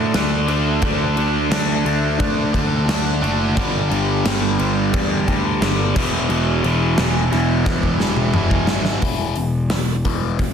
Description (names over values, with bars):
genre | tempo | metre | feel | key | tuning
hard rock | 88 BPM | 4/4 | straight | unclear | A4 = 440 Hz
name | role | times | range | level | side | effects
cranked stack guitar | riff | 0.0-8.7 s | E2 to D4 | -24 LUFS | equal | overdrive
distorted electric guitar | riff | 0.0-9.0 s | E2 to D4 | -23 LUFS | right 10 dB | overdrive
overdriven electric guitar | riff | 0.0-10.5 s | E2 to D4 | -23 LUFS | left 10 dB | phaser
fuzz picked electric bass | bass | 0.0-10.5 s | E1 to A2 | -22 LUFS | equal | overdrive
gated 80s drum kit | drums | 0.1-10.5 s | crash cymbal, hi-hat, kick drum, snare drum, toms | -22 LUFS | equal | soft clipping on kick
room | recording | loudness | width
light reverb, small room reverb | dense, heavily limited modern master | -16 LUFS | side -7 dB against mid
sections
0.0-9.0 A section; 9.0-10.5 B section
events
drum fill 7.7-9.0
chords
0.0 D5; 3.6 G5; 6.0 E5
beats
0.14 | 0.83 1.51 2.20 2.88 | 3.57 4.25 4.93 5.62 | 6.30 6.98 7.67 8.35 | 9.03 9.71 10.40